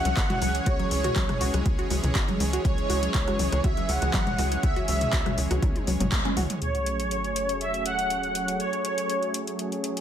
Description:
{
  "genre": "progressive house",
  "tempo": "121 BPM",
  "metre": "4/4",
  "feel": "straight",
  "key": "F# minor",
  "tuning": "A4 = 440 Hz",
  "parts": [
    { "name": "soft supersaw", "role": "melody", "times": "0.0-9.3 s", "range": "C#5 to F#5", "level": "-29 LUFS", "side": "right 1 dB", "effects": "vintage 12-bit sampler grit, sidechain pumping, ping-pong delay" },
    { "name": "supersaw pad", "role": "sustained chords", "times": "0.0-10.0 s", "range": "E3 to C#5", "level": "-32 LUFS", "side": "right 1 dB", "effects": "sidechain pumping, low-pass filter" },
    { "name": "wide unison pluck", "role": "arpeggios", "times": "0.1-6.5 s", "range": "F#3 to F#4", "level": "-32 LUFS", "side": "equal", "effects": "sidechain pumping, ping-pong delay" },
    { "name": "tight sequencer bass", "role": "bass", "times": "0.1-6.5 s", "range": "G#1 to C#2", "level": "-29 LUFS", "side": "equal", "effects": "sidechain pumping" },
    { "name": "deep house drum kit", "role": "drums", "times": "0.1-10.0 s", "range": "handclaps, hi-hat, rim click, toms", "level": "-32 LUFS", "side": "left 1 dB", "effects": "overdrive" },
    { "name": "electronic kick drum", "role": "drums", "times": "0.2-6.2 s", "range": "none", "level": "-27 LUFS", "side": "equal", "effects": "overdrive" },
    { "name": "electronic toms and congas", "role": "percussion", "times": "0.3-6.3 s", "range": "none", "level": "-33 LUFS", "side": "left 2 dB", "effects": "overdrive, sidechain pumping on toms, sidechain pumping on perc" },
    { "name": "sub drop", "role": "sound effects", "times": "6.6-8.6 s", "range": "none", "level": "-35 LUFS", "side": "equal", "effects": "none" }
  ],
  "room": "light reverb, digital ambience",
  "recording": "none",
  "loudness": "-23 LUFS",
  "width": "side -9 dB against mid",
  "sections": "0.0-6.6 A section; 6.6-10.0 B section",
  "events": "drum fill 5.6-6.6; band accent 6.1; impact 6.6-8.6",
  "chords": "0.0 C#m; 6.6 F#madd9"
}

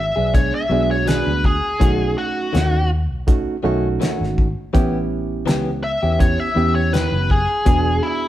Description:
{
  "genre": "straight-eighth soul blues",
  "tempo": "82 BPM",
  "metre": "4/4",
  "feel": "swing 54% on 16ths",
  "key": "unclear",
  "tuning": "A4 = 438 Hz",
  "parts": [
    { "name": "biting lead guitar", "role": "melody", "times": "0.0-8.3 s", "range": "E4 to E5", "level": "-21 LUFS", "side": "left 1 dB", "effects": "overdrive" },
    { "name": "vintage muted fingered electric bass", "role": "bass", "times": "0.0-8.0 s", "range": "E1 to E2", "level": "-22 LUFS", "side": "equal", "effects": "none" },
    { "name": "direct-recorded clean electric guitar", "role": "stabs", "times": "0.2-7.9 s", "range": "D#3 to G#4", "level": "-26 LUFS", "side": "left 4 dB", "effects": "none" },
    { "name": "barky reed electric piano", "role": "accompaniment", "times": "0.3-8.3 s", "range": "G#3 to G#4", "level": "-24 LUFS", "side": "right 5 dB", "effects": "none" },
    { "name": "cloth-damped thuddy drum kit", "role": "drums", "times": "0.3-7.8 s", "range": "hi-hat, kick drum, snare drum", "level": "-19 LUFS", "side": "equal", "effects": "none" }
  ],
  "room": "moderate stone room reverb, RT60 1.4 s",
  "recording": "band playing live in one room",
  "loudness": "-16 LUFS",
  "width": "side -13 dB against mid",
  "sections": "0.0-8.3 A section",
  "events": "lead electric guitar solo 0.0-8.3",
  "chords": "0.0 E9; 1.8 B9; 4.7 A9; 7.7 E9"
}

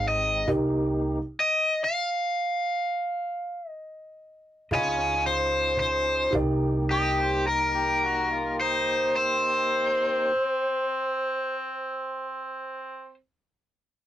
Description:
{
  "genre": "slow blues",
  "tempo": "36-46 BPM (dotted quarters)",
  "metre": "12/8",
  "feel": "straight",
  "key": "C minor",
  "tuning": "A4 = 441 Hz",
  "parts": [
    { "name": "cranked stack guitar", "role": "melody", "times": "0.0-13.1 s", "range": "G4 to Ab5", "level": "-25 LUFS", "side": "left 1 dB", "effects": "overdrive" },
    { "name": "warm upright piano", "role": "accompaniment", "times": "0.0-10.3 s", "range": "Eb4 to Cb6", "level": "-30 LUFS", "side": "right 2 dB", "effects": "none" },
    { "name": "tonewheel organ", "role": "sustained chords", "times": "0.0-10.3 s", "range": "Ab3 to Ab4", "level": "-35 LUFS", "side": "equal", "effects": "slow rotary speaker" },
    { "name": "upright bass", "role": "bass", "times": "0.0-10.3 s", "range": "Ab1 to Db2", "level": "-32 LUFS", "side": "equal", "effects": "none" },
    { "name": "cajon", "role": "drums", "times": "0.1-6.6 s", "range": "none", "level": "-34 LUFS", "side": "equal", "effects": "none" },
    { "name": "mellow harmonica", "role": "second line", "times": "6.9-13.2 s", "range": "C4 to Eb5", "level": "-30 LUFS", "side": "right 2 dB", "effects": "overdrive" }
  ],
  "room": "moderate booth ambience, RT60 0.2 s",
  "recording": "rough rehearsal-room recording, warm saturation",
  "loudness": "-23 LUFS",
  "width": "side -11 dB against mid",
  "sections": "0.0-6.3 A section; 6.3-13.1 B section",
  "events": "slowing down 0.0-6.3; stop 0.5-4.7",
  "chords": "0.5 Cm7; 4.7 Db7; 6.3 Cm7"
}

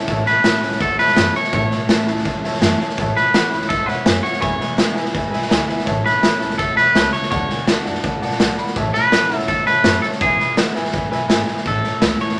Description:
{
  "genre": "rockabilly",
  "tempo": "166 BPM",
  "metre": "4/4",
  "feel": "straight",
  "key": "A major",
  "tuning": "A4 = 437 Hz",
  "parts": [
    { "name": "picked steel-string acoustic guitar", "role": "accompaniment", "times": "0.0-12.4 s", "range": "E2 to F#4", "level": "-30 LUFS", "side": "equal", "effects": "none" },
    { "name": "clear upright piano", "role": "accompaniment", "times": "0.1-12.4 s", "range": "B4 to B5", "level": "-28 LUFS", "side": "equal", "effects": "none" },
    { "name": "upright bass", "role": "bass", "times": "0.1-12.2 s", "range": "E1 to A2", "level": "-31 LUFS", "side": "equal", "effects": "none" },
    { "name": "raw garage drum kit", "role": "drums", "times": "0.1-12.4 s", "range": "hi-hat, kick drum, snare drum", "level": "-21 LUFS", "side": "equal", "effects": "none" },
    { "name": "twangy electric guitar", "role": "melody", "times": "0.3-12.4 s", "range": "G#4 to C#5", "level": "-20 LUFS", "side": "equal", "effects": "none" }
  ],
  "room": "wet club reverb, RT60 0.6 s",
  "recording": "none",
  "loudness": "-18 LUFS",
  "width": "mono",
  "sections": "0.1-11.7 A section",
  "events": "none",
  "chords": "0.1 A; 4.4 E7; 5.9 A; 7.3 D; 8.8 A; 10.2 E7; 11.7 A"
}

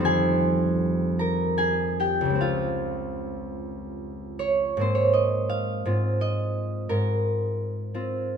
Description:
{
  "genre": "classical, solo harp piece",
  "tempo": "49-58 BPM (dotted quarters)",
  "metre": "6/8",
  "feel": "rubato",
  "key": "unclear",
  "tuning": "A4 = 439 Hz",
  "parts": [
    { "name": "concert harp", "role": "solo", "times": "0.0-8.4 s", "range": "Db2 to Bb5", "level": "-23 LUFS", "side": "right 1 dB", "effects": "none" }
  ],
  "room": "moderate stone room reverb, RT60 1.4 s",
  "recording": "none",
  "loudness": "-23 LUFS",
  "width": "side -7 dB against mid",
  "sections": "0.0-4.8 A section; 4.8-8.4 B section",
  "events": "none",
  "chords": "0.1 Fm9; 2.4 Dbmaj7; 4.8 Abadd9; 5.8 Fm7/Ab"
}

